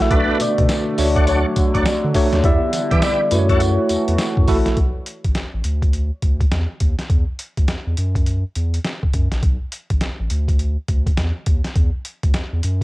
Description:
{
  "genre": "R&B, new jack swing",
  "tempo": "103 BPM",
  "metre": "4/4",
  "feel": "swing 63% on 16ths",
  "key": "unclear",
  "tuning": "A4 = 444 Hz",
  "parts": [
    { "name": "soft struck synth lead", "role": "melody", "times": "0.0-4.2 s", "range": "C#5 to E5", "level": "-23 LUFS", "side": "left 1 dB", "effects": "chorus, phaser" },
    { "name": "tine electric piano", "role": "accompaniment", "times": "0.0-4.8 s", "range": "A3 to D5", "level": "-20 LUFS", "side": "equal", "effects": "medium stereo tremolo, cassette tape" },
    { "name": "sweeping resonant pad", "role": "sustained chords", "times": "0.0-4.8 s", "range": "B2 to F#4", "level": "-27 LUFS", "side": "equal", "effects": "chorus, cassette tape" },
    { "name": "round analog bass", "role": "bass", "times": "0.0-12.8 s", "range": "A1 to E3", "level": "-20 LUFS", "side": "equal", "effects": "none" },
    { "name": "boom bap sampler-style drum kit", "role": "drums", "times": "0.0-12.8 s", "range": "hi-hat, kick drum, snare drum, tambourine", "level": "-19 LUFS", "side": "equal", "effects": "cassette tape" },
    { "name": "tonewheel organ", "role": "stabs", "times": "0.1-3.6 s", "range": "D4 to D5", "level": "-25 LUFS", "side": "equal", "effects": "chorus vibrato, slow rotary speaker, cassette tape" }
  ],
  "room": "little or no reverb",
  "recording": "home recording on cassette",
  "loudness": "-16 LUFS",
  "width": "side -18 dB against mid",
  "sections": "0.0-4.8 A section; 4.8-12.8 B section",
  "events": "none",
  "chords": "0.1 Bm7; 1.0 Dmaj7; 2.4 Em7; 3.3 F#m7; 4.8 Asus2; 5.6 Dsus2; 8.0 F#7(no3); 9.4 Asus2; 10.3 Dsus2"
}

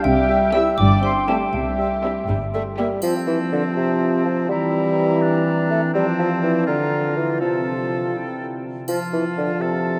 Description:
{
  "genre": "cinematic, playful, whimsical film cue",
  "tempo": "82 BPM (dotted quarters)",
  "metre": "6/8",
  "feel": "straight",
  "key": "F major",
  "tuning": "A4 = 440 Hz",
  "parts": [
    { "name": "xylophone with plastic mallets", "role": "melody", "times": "0.0-2.2 s", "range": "G5 to E6", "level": "-36 LUFS", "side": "equal", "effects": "none" },
    { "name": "mellow clarinet", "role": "second line", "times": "0.0-10.0 s", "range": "C4 to G5", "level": "-28 LUFS", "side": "equal", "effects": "none" },
    { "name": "mellow flute section", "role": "second line", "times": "0.0-10.0 s", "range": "G5 to E6", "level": "-32 LUFS", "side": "equal", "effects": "none" },
    { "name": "warm studio cello section", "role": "bass", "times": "0.0-2.9 s", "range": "G2 to C3", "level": "-26 LUFS", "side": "equal", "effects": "none" },
    { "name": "dark studio violin section", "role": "melody", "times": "0.1-2.3 s", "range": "G4 to E5", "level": "-39 LUFS", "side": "equal", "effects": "none" },
    { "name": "warm French horn section", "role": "sustained chords", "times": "0.1-10.0 s", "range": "C3 to E4", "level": "-27 LUFS", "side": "equal", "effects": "none" },
    { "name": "dark symphonic double bass section", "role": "bass", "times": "0.1-2.9 s", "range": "G1 to C2", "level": "-27 LUFS", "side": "equal", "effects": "none" },
    { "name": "clear oboe", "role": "second line", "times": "0.3-10.0 s", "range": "C4 to E5", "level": "-31 LUFS", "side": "equal", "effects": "none" },
    { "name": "mellow bassoon", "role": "accompaniment", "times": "0.3-10.0 s", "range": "C3 to A3", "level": "-26 LUFS", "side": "equal", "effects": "none" },
    { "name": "rich studio violin section", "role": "second line", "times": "0.5-3.0 s", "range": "E4 to G4", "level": "-37 LUFS", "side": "equal", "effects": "none" },
    { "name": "rich studio viola section", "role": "accompaniment", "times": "0.5-2.9 s", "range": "G3 to C4", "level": "-33 LUFS", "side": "equal", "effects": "none" },
    { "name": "triangle", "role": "percussion", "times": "3.0-4.0, 8.9-9.8 s", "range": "none", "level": "-42 LUFS", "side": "equal", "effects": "none" }
  ],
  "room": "wet cathedral reverb, RT60 5.0 s",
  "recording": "in a vast, echoing space",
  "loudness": "-20 LUFS",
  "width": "mono",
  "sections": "0.0-3.0 A section; 3.0-10.0 B section",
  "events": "none",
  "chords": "0.0 C; 3.0 F; 4.5 C7/E; 5.9 F; 6.7 Bb/D; 7.4 F/C; 8.1 C; 8.9 F"
}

